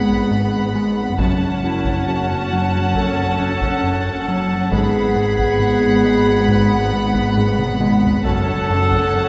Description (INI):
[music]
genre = cinematic, suspense film score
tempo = 68 BPM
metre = 4/4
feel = straight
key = F# minor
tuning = A4 = 440 Hz
[part]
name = rich symphonic violin section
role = melody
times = 0.0-9.3 s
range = A5 to B5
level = -29 LUFS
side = equal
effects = none
[part]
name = clear clarinet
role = second line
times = 0.0-9.3 s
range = E4 to A4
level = -24 LUFS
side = equal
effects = none
[part]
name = rich studio violin section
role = second line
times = 0.0-9.3 s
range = F#5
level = -29 LUFS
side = equal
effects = none
[part]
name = rich symphonic viola section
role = accompaniment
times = 0.0-9.3 s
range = B3 to C#4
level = -26 LUFS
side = equal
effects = none
[part]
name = fat analog bass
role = riff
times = 0.0-9.3 s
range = F#2 to G#3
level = -24 LUFS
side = equal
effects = none
[part]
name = rich symphonic cello section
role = bass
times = 0.0-9.3 s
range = F#2 to G#2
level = -25 LUFS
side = equal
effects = none
[part]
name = rich symphonic double bass section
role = bass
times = 0.0-9.3 s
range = F#1 to G#1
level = -28 LUFS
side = equal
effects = none
[part]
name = taiko ensemble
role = drums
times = 0.1-9.3 s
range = none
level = -29 LUFS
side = equal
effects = none
[sound]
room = wet concert hall reverb, RT60 2.5 s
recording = nothing above 8.0 kHz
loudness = -18 LUFS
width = mono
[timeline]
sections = 0.0-9.3 A section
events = drum fill 7.4-8.3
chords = 0.0 G#m7; 1.2 F#m; 4.7 G#m7; 8.3 F#m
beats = 0.31 | 1.19 2.08 2.96 3.84 | 4.72 5.60 6.49 7.37 | 8.25 9.13